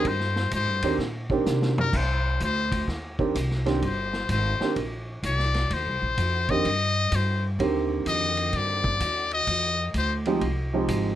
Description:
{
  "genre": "jazz, small-group swing and bop",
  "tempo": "127 BPM",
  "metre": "4/4",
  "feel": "swing 66% on 8ths",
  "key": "C minor",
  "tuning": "A4 = 437 Hz",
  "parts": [
    { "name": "trumpet with metal mute", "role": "melody", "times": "0.0-10.2 s", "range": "G4 to Eb5", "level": "-26 LUFS", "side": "left 4 dB", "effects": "none" },
    { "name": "warm grand piano", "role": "accompaniment", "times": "0.0-11.2 s", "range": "D3 to G4", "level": "-26 LUFS", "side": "right 4 dB", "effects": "none" },
    { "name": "upright bass", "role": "bass", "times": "0.0-11.2 s", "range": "G1 to C3", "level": "-28 LUFS", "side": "equal", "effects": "none" },
    { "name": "vintage drum kit", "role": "drums", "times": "0.0-11.0 s", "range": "crash cymbal, hi-hat, kick drum, ride cymbal, snare drum, toms", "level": "-32 LUFS", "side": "equal", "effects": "none" }
  ],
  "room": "little or no reverb",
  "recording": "close, detailed microphones",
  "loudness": "-23 LUFS",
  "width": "side -12 dB against mid",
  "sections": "0.0-1.9 A section; 1.9-11.2 A section",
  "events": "muted trumpet solo 0.0-11.2; drum fill 1.5-1.9",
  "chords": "0.1 Cm7; 9.5 Fm7"
}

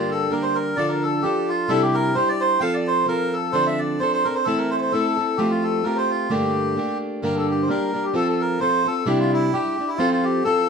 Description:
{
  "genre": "celtic folk, Celtic polka",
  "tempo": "130 BPM",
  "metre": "2/4",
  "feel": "swing 56% on 8ths",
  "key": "G dorian",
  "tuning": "A4 = 440 Hz",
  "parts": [
    { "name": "melodica", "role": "melody", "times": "0.0-10.7 s", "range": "E4 to G5", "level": "-23 LUFS", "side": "right 1 dB", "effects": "none" },
    { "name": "mellow accordion", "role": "second line", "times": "0.0-10.7 s", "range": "E4 to F5", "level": "-28 LUFS", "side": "left 7 dB", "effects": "none" },
    { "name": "fingerpicked plugged-in acoustic archtop guitar", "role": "accompaniment", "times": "0.0-10.7 s", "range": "G2 to A4", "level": "-22 LUFS", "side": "right 1 dB", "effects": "none" }
  ],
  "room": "wet small room reverb, RT60 0.5 s",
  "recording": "minimal, uncompressed stereo recording",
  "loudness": "-19 LUFS",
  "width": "side -6 dB against mid",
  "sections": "0.0-7.2 A section; 7.2-10.7 B section",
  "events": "none",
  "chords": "0.0 Gm; 0.8 Dm; 1.7 Cadd9; 2.6 F; 3.5 Dm7; 4.5 Am/E; 5.4 Fadd9; 6.3 Gmadd9; 7.2 Gm; 8.2 F; 9.1 Cadd9; 10.0 F"
}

